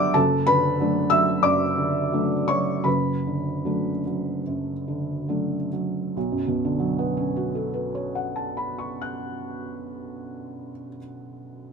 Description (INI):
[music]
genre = neoclassical minimalist piano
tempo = 66-93 BPM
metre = 4/4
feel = rubato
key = B minor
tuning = A4 = 440 Hz
[part]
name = felt-muted upright piano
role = solo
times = 0.0-11.7 s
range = F#1 to G6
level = -23 LUFS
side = equal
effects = none
[sound]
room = light reverb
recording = minimal, uncompressed stereo recording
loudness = -22 LUFS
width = side -5 dB against mid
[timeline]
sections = 0.0-6.2 A section; 6.2-9.5 B section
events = slowing down 0.0-6.2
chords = 0.1 Bm7/F#; 6.2 Bm9